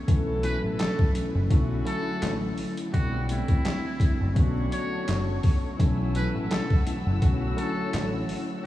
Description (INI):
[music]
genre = hip hop, boom-bap hip-hop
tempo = 84 BPM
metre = 4/4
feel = swing 55% on 16ths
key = unclear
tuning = A4 = 442 Hz
[part]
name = mellow tine electric piano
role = accompaniment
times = 0.0-8.7 s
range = B2 to E4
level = -30 LUFS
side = equal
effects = medium stereo tremolo, high-pass filter, low-pass filter
[part]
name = mellow saxophone section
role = stabs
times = 0.1-8.3 s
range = F#3 to A4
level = -36 LUFS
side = left 2 dB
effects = high-pass filter, low-pass filter, diffuse ambient delay
[part]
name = deep dub fingered electric bass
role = bass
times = 0.1-8.2 s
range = F#1 to B1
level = -28 LUFS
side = equal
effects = none
[part]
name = boom bap sampler-style drum kit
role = drums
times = 0.1-8.5 s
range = handclaps, hi-hat, kick drum, snare drum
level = -25 LUFS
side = equal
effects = none
[part]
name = trumpet with metal mute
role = melody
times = 0.4-8.1 s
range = E4 to C#5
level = -35 LUFS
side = right 1 dB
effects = high-pass filter, low-pass filter, diffuse ambient delay
[part]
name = muted studio string section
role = sustained chords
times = 4.4-8.7 s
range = A4 to E6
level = -39 LUFS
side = left 2 dB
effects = high-pass filter, low-pass filter
[sound]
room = light reverb, small room ambience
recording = vinyl crackle, small room reverb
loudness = -23 LUFS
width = side -14 dB against mid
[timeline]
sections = 0.0-8.7 A section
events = none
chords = 0.1 F#m7; 1.5 Dmaj9/B; 2.9 C6; 4.4 Bm9; 5.8 F#m7; 7.2 Dmaj9/B